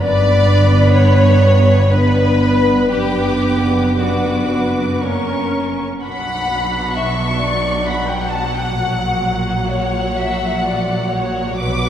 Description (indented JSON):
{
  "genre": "classical, slow romantic movement for symphony orchestra",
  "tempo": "56-68 BPM",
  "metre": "3/4",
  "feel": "rubato",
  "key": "B minor",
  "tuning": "A4 = 440 Hz",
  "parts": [
    { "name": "rich studio violin section", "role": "melody", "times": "0.0-11.9 s", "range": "F#5 to D6", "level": "-24 LUFS", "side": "left 2 dB", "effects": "none" },
    { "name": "rich studio violin section", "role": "second line", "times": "0.0-11.9 s", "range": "F#4 to F#5", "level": "-20 LUFS", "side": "left 2 dB", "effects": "none" },
    { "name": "rich studio viola section", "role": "accompaniment", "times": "0.0-11.9 s", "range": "F#3 to B4", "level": "-22 LUFS", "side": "equal", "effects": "none" },
    { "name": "warm French horn section", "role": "sustained chords", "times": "0.0-5.7 s", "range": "A#3 to D4", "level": "-20 LUFS", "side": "left 1 dB", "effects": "none" },
    { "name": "rich studio cello section", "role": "bass", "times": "0.0-11.9 s", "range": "F#2 to B2", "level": "-20 LUFS", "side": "right 1 dB", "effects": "none" },
    { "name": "rich symphonic double bass section", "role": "bass", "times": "0.0-11.9 s", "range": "F#1 to B1", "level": "-21 LUFS", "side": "right 1 dB", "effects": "none" }
  ],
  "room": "wet church reverb, RT60 3.0 s",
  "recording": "recorded in a church or concert hall",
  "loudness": "-13 LUFS",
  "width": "side -10 dB against mid",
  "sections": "0.0-6.0 A section; 6.0-11.9 B section",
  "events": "none",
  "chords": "0.0 G; 2.9 Bm/F#; 5.0 F#; 6.0 Bm; 8.8 F#/A#"
}